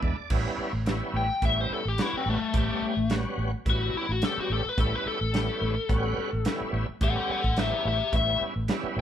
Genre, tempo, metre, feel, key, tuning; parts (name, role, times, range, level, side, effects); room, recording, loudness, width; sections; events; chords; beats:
straight-eighth soul blues; 107 BPM; 4/4; swing 55% on 16ths; A mixolydian; A4 = 440 Hz
bright tonewheel organ; accompaniment; 0.0-9.0 s; G3 to D5; -33 LUFS; right 3 dB; slow rotary speaker, overdrive, chorus vibrato
vintage muted fingered electric bass; bass; 0.0-9.0 s; A1 to E2; -30 LUFS; equal
warm soul drum kit; drums; 0.0-8.8 s; crash cymbal, hi-hat, kick drum, snare drum; -29 LUFS; right 1 dB
biting lead guitar; melody; 1.2-8.4 s; A3 to G5; -28 LUFS; left 5 dB; overdrive
light reverb; band playing live in one room; -25 LUFS; side -10 dB against mid
0.3-9.0 A section
tonewheel organ fill 0.0-0.3; lead electric guitar solo 0.3-9.0
0.3 A9
| 0.31 0.87 1.43 1.98 | 2.54 3.10 3.66 4.22 | 4.78 5.34 5.90 6.45 | 7.01 7.57 8.13 8.69